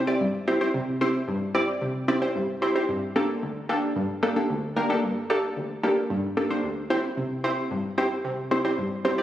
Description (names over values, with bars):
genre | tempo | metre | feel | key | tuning
pop | 112 BPM | 4/4 | straight | unclear | A4 = 440 Hz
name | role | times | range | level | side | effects
analog pluck | solo | 0.0-9.2 s | D2 to D5 | -23 LUFS | equal | chorus, digital delay
room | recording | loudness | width
wet lush hall reverb, RT60 2.0 s | recorded on a phone in the room, studio reverb, compression | -24 LUFS | side -12 dB against mid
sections
0.0-9.2 A section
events
none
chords
0.0 C; 2.9 Gmadd9; 6.9 C